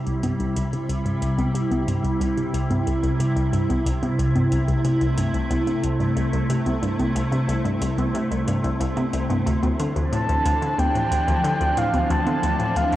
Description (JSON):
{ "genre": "ambient, sequencer-driven space music", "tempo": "91 BPM", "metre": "4/4", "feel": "straight", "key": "unclear", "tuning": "A4 = 440 Hz", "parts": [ { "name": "evolving wavetable pad", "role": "sustained chords", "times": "0.0-13.0 s", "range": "C3 to E4", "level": "-23 LUFS", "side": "equal", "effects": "ensemble chorus, built-in reverb, phaser" }, { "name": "wind-like tuned noise texture", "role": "texture", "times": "0.0-13.0 s", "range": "C4 to C5", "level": "-36 LUFS", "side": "left 1 dB", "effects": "built-in reverb" }, { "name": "hollow square pluck", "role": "riff", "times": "0.1-13.0 s", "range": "C2 to D3", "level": "-24 LUFS", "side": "left 1 dB", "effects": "chorus, phaser, tape echo" }, { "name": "electronic hi-hat and congas", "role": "percussion", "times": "0.1-13.0 s", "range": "none", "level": "-31 LUFS", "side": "equal", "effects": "overdrive, tape echo" }, { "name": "breathy flute-like synth lead", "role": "melody", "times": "10.1-13.0 s", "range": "F5 to A5", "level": "-23 LUFS", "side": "equal", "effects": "wide subtle chorus, tape echo" } ], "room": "moderate huge ambient reverb, RT60 8.8 s", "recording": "worn, warbling old tape, cassette tape, warbly pitch drift", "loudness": "-20 LUFS", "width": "side -14 dB against mid", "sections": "0.0-13.0 A section", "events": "fade-in on synth texture 0.0-13.0", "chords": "0.0 C; 9.5 Dmadd9", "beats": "0.23 0.89 | 1.55 2.21 2.87 3.53 | 4.19 4.85 5.51 6.17 | 6.83 7.49 8.14 8.80 | 9.46 10.12 10.78 11.44 | 12.10 12.76" }